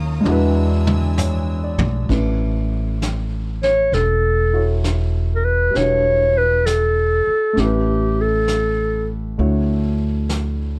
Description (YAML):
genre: jazz ballad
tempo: 66 BPM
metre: 4/4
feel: swing 67% on 8ths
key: A major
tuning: A4 = 435 Hz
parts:
  - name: warm concert grand piano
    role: accompaniment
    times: 0.0-10.8 s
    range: Gb3 to D5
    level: -26 LUFS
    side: equal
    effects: none
  - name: warm symphonic string section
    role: sustained chords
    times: 0.0-2.1 s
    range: D4 to E6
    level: -35 LUFS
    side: equal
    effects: none
  - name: upright bass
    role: bass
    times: 0.0-10.8 s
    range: E1 to E2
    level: -22 LUFS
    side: equal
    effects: none
  - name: vintage brush drum kit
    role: drums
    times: 0.3-10.8 s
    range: brushed snare drum, hi-hat, kick drum, ride cymbal, snare drum, toms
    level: -29 LUFS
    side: equal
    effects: none
  - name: mellow clarinet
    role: melody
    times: 3.6-9.1 s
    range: G4 to C#5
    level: -20 LUFS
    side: equal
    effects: none
room: light reverb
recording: dark, warm production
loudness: -19 LUFS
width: mono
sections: 0.0-2.1 A section; 2.1-10.8 B section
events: drum fill 0.3-2.1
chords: 0.3 E9; 2.1 Aadd9; 5.7 Em9; 7.6 A9; 9.4 Dmaj9